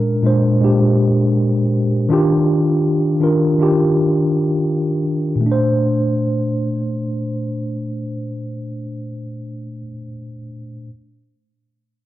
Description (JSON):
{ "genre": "hip hop", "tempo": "81 BPM", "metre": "4/4", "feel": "swing 61% on 16ths", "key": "Bb major", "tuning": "A4 = 440 Hz", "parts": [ { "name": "mellow tine electric piano", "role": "accompaniment", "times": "0.0-10.9 s", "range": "Bb2 to C5", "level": "-16 LUFS", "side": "equal", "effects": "medium stereo tremolo, cassette tape" } ], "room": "light reverb", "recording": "cassette tape", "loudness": "-15 LUFS", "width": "side -14 dB against mid", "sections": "0.0-5.4 A section; 5.4-8.4 B section", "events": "none", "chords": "0.0 Bb7; 2.1 Ebmaj9; 5.4 Bbmaj9" }